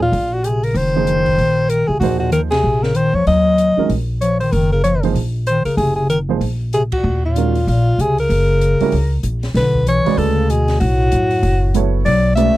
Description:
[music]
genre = modal jazz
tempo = 191 BPM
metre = 4/4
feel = swing 61% on 8ths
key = Eb dorian, B dorian from 9.6 s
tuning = A4 = 441 Hz
[part]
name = clear alto saxophone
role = melody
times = 0.0-12.6 s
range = F4 to E5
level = -18 LUFS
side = equal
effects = none
[part]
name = mellow bass clarinet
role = second line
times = 0.0-12.6 s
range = A2 to A3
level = -19 LUFS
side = left 3 dB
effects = none
[part]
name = upright bass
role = bass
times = 0.0-12.5 s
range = Gb1 to F#2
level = -18 LUFS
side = equal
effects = none
[part]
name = open jazz drum kit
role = drums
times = 0.1-12.5 s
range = hi-hat, kick drum, ride cymbal, snare drum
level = -32 LUFS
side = left 1 dB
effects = none
[part]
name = dark baby grand piano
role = accompaniment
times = 1.0-12.5 s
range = C#3 to D5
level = -20 LUFS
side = right 10 dB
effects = none
[sound]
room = little or no reverb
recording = dry, close 1970s-style studio recording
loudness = -14 LUFS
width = side -16 dB against mid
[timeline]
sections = 0.0-9.6 A section; 9.6-12.6 B section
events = band accent 2.5, 6.9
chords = 0.0 Ebm69; 8.3 Gb; 9.6 Bm9

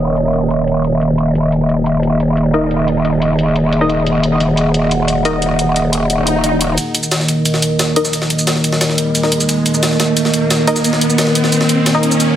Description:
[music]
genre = dark technical drum and bass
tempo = 177 BPM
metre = 4/4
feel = straight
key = Eb minor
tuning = A4 = 440 Hz
[part]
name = dark analog pad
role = sustained chords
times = 0.0-12.4 s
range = Eb3 to Gb5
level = -15 LUFS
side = equal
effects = wide subtle chorus
[part]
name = growl bass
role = bass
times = 0.0-6.8 s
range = Eb1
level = -17 LUFS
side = equal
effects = chorus, overdrive
[part]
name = electronic hi-hat and shaker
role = drums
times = 0.0-12.3 s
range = none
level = -19 LUFS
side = equal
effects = overdrive, low-pass filter on hats, studio reverb, low-pass filter on perc
[part]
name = filtered dub chord stab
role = stabs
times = 2.5-5.4, 8.0-12.0 s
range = Eb4 to Eb5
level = -21 LUFS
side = left 2 dB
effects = chorus, tape echo
[part]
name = swell and riser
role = sound effects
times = 6.2-12.4 s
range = none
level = -21 LUFS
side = right 1 dB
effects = none
[part]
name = jungle sampler-style drum kit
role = drums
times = 6.8-12.3 s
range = ride cymbal, snare drum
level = -20 LUFS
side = equal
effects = high-pass filter on cymbals, studio reverb, high-pass filter on snare
[sound]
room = moderate lush hall reverb, RT60 1.9 s, digital ambience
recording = heavily compressed radio sound, low-pass filter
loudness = -12 LUFS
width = side -11 dB against mid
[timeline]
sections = 0.0-6.8 A section; 6.8-12.4 B section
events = filter sweep on drum 0.0-6.8; filter sweep on synth stab 0.0-6.8, 6.8-12.4; filter sweep 0.0-6.8; swell 6.2-6.8; build-up 6.8-12.4; riser 6.8-12.4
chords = 0.0 Eb5

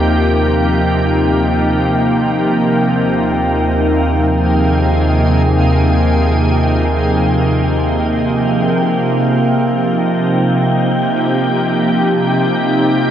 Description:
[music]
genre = ambient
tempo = free time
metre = none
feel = none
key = Eb major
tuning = A4 = 440 Hz
[part]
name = soft additive organ-like pad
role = sustained chords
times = 0.0-13.1 s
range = C3 to Ab4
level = -13 LUFS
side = equal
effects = ensemble chorus, built-in reverb
[part]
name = round analog bass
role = bass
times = 0.0-8.7 s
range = Eb2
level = -17 LUFS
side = equal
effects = none
[part]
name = hand-pumped harmonium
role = drone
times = 0.0-8.8 s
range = Eb3 to Bb3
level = -24 LUFS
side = equal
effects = none
[part]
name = wind-like tuned noise texture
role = texture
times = 0.0-13.1 s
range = G5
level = -22 LUFS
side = equal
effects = built-in reverb, shimmer reverb
[sound]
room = wet huge ambient reverb, RT60 7.8 s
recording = worn, warbling old tape, cassette tape, warbly pitch drift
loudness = -12 LUFS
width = side -10 dB against mid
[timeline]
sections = 0.0-8.7 A section; 8.7-13.1 B section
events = none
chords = 0.0 Eb; 2.5 Fm/Eb; 8.7 Eb

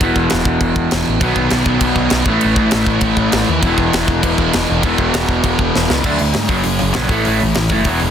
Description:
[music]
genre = punk rock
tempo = 199 BPM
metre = 4/4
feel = straight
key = E major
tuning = A4 = 440 Hz
[part]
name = crunchy overdriven guitar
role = riff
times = 0.0-8.1 s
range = E2 to D4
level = -17 LUFS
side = equal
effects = none
[part]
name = growling picked electric bass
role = bass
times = 0.0-8.1 s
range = E1 to G#2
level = -21 LUFS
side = equal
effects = overdrive
[part]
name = tight metal drum kit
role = drums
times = 0.0-8.1 s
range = crash cymbal, hi-hat, kick drum, snare drum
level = -19 LUFS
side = equal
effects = none
[part]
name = sludgy distorted guitar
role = riff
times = 1.2-8.1 s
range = F#2 to E4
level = -19 LUFS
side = equal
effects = overdrive
[sound]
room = little or no reverb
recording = dense, heavily limited modern master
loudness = -13 LUFS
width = side -8 dB against mid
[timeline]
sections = 0.0-6.0 A section; 6.0-8.1 B section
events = drum fill 5.7-6.0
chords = 0.0 E5; 1.2 B; 2.3 A; 3.6 E; 6.0 D; 6.5 F#; 7.1 A

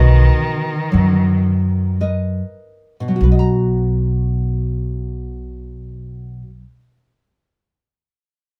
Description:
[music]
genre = fado-style ballad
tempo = 47-64 BPM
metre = 4/4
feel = rubato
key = B major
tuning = A4 = 440 Hz
[part]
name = picked plugged-in twelve-string acoustic guitar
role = melody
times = 0.0-2.0 s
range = B4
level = -35 LUFS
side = equal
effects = none
[part]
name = dark cello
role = second line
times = 0.0-2.0 s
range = D#3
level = -24 LUFS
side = equal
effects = none
[part]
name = nylon-string guitar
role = accompaniment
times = 0.0-6.8 s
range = B2 to A#5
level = -24 LUFS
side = equal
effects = none
[part]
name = upright bass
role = bass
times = 0.0-6.6 s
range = B1 to F#2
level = -19 LUFS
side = equal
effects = none
[sound]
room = moderate studio reverb, RT60 0.5 s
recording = band playing live in one room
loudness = -17 LUFS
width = mono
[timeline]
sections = 0.0-3.2 A section; 3.2-8.0 B section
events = slowing down 0.0-3.2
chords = 0.0 Bmaj7; 3.2 Bmaj7(no3)

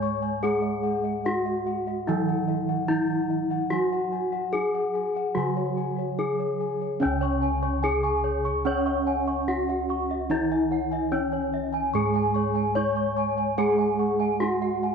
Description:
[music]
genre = Javanese gamelan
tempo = 73 BPM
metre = 4/4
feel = straight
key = unclear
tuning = A4 = 440 Hz
[part]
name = gamelan-type bronze metallophone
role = melody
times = 0.0-14.9 s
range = C#4 to C#5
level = -27 LUFS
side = left 2 dB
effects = tape echo
[part]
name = gamelan-type bronze metallophone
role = accompaniment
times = 0.0-14.9 s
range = C#3 to C#4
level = -30 LUFS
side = right 9 dB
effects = none
[part]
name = gamelan-type bossed gongs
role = arpeggios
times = 0.0-14.9 s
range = C#5 to C#6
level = -32 LUFS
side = left 8 dB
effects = none
[part]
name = gamelan-type bossed gongs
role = bass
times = 0.0-14.9 s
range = C#2 to G#4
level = -32 LUFS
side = equal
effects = none
[part]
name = gamelan-type bronze metallophone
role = arpeggios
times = 7.0-14.9 s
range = C#5 to C#6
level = -30 LUFS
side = right 7 dB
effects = none
[sound]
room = wet echo chamber reverb, RT60 1.7 s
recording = 1960s-style stereo with parts hard left and right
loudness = -23 LUFS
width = side -6 dB against mid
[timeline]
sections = 0.0-7.0 A section; 7.0-14.9 A section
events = none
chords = none

